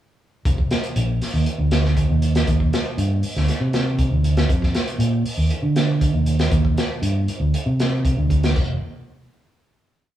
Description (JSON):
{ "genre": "afrobeat", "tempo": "118 BPM", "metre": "4/4", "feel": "straight", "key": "unclear", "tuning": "A4 = 440 Hz", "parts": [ { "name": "fingered electric bass", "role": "bass", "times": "0.5-8.8 s", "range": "F1 to D3", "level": "-19 LUFS", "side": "right 1 dB", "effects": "none" }, { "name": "crunchy breakbeat drum kit", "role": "drums", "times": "0.5-8.7 s", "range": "hi-hat, kick drum, snare drum, splash cymbal", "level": "-22 LUFS", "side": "equal", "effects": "none" } ], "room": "light reverb", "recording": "band playing live in one room", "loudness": "-18 LUFS", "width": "side -12 dB against mid", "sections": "0.5-8.6 groove; 8.6-10.2 final note", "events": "none", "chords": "none" }